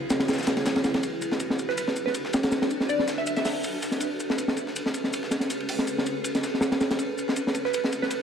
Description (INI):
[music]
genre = drum and bass, jungle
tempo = 161 BPM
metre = 4/4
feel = swing 54% on 16ths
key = B dorian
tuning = A4 = 442 Hz
[part]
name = granular cloud pad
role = sustained chords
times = 0.0-8.2 s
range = C#3 to B4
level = -31 LUFS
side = equal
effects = built-in reverb
[part]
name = crunchy breakbeat drum kit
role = drums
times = 0.1-8.2 s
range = hi-hat, ride cymbal, snare drum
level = -26 LUFS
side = equal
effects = high-pass filter on cymbals, high-pass filter on hats, high-pass filter on snare, high-pass filter on room
[part]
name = dusty soul sampler-style drum kit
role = drums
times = 0.1-8.2 s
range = hi-hat, shaker, snare drum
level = -37 LUFS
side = left 2 dB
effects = overdrive, high-pass filter on perc, high-pass filter on snare, high-pass filter on hats
[part]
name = glassy wavetable pluck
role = melody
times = 1.7-3.5, 7.7-8.2 s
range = B4 to E5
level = -30 LUFS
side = right 3 dB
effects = chorus, cassette tape, dub echo
[sound]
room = moderate echo chamber reverb, RT60 1.2 s, small room ambience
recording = dark, warm production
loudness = -24 LUFS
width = side -7 dB against mid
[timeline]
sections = 0.0-8.2 A section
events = none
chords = 0.0 F#9sus4/C#; 1.0 Bm7; 4.0 Amaj9; 7.0 Bm7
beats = 0.29 0.66 | 1.03 1.40 1.78 2.15 | 2.52 2.90 3.27 3.64 | 4.01 4.38 4.76 5.13 | 5.50 5.88 6.25 6.62 | 6.99 7.37 7.74 8.11